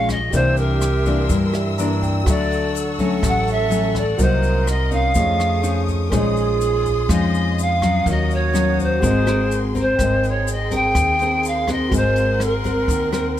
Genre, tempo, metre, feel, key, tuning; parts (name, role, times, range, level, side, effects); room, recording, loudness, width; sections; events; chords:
bossa nova; 124 BPM; 4/4; straight; Ab major from 10.0 s; A4 = 439 Hz
bright reedy pan flute; melody; 0.0-13.4 s; Ab4 to G5; -21 LUFS; right 1 dB
mellow hollow silver concert flute; second line; 0.0-13.4 s; F4 to Bb4; -28 LUFS; right 6 dB
nylon-string guitar; accompaniment; 0.0-13.4 s; G2 to Bb4; -22 LUFS; left 4 dB
warm concert grand piano; accompaniment; 0.0-13.4 s; A3 to C#6; -31 LUFS; right 4 dB
warm symphonic string section; sustained chords; 0.0-13.4 s; A3 to E6; -32 LUFS; left 3 dB
upright bass; bass; 0.0-13.4 s; Ab1 to G2; -22 LUFS; equal
jazz brush drum kit; drums; 0.1-13.4 s; hi-hat, kick drum, rim click; -26 LUFS; equal
tube shaker; percussion; 0.1-13.4 s; -35 LUFS; left 9 dB
little or no reverb; close, detailed microphones; -16 LUFS; side -11 dB against mid
0.0-10.0 A section; 10.0-13.4 B section
grand piano fill 1.5-2.3
0.3 C9; 2.3 Dmaj7; 4.2 Cm7b5; 5.2 F7alt; 6.1 Bbm11; 8.1 Ebm9; 9.0 Ab9; 10.0 Abmaj9; 11.9 Ab9